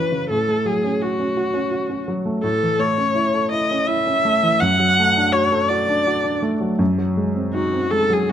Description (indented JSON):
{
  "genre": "classical, romantic duo for viola and grand piano",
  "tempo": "83 BPM",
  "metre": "3/4",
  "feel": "rubato",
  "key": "unclear",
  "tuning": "A4 = 440 Hz",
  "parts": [
    { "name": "clear viola", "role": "melody", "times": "0.0-8.3 s", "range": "F#4 to F#5", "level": "-19 LUFS", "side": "left 1 dB", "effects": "none" },
    { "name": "warm grand piano", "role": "accompaniment", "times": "0.0-8.3 s", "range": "F#2 to A4", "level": "-21 LUFS", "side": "right 1 dB", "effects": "none" }
  ],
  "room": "light reverb",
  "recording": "close, detailed microphones",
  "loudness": "-17 LUFS",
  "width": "side -9 dB against mid",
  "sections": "0.0-8.3 A section",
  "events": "none",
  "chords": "0.3 F#m/A; 2.4 A; 4.6 D/F#; 6.8 G#7/F#"
}